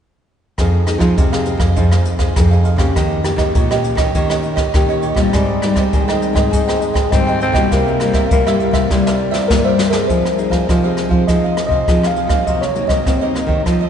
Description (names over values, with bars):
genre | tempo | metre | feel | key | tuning
samba and choro | 101 BPM | 4/4 | straight | F minor | A4 = 440 Hz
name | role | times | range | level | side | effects
cavaquinho | accompaniment | 0.6-13.9 s | Eb4 to G5 | -23 LUFS | right 5 dB | none
nylon-string guitar | accompaniment | 0.6-13.9 s | G2 to A4 | -20 LUFS | left 3 dB | none
nylon-string guitar | bass | 0.6-13.9 s | F2 to C4 | -18 LUFS | right 1 dB | none
jazz brush drum kit | drums | 0.6-13.8 s | hi-hat, kick drum, rim click, snare drum | -18 LUFS | equal | none
growling tenor saxophone | second line | 5.3-10.1 s | G3 to C4 | -20 LUFS | left 2 dB | none
mellow tine electric piano | melody | 9.5-13.7 s | Bb4 to F5 | -19 LUFS | equal | fast stereo tremolo
room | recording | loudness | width
wet cathedral reverb, RT60 4.5 s | recorded in a church or concert hall, nothing above 10.3 kHz | -13 LUFS | side -8 dB against mid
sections
0.6-10.1 A section; 10.1-13.9 B section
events
drum fill 8.9-10.1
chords
0.6 Fm7; 3.0 Eb7; 5.3 Abmaj7; 7.7 C7; 10.1 Fm7; 12.5 Cm7b5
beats
| 0.58 1.18 1.77 2.37 | 2.96 3.56 4.15 4.75 | 5.34 5.93 6.53 7.12 | 7.72 8.31 8.90 9.50 | 10.09 10.69 11.28 11.88 | 12.47 13.06 13.66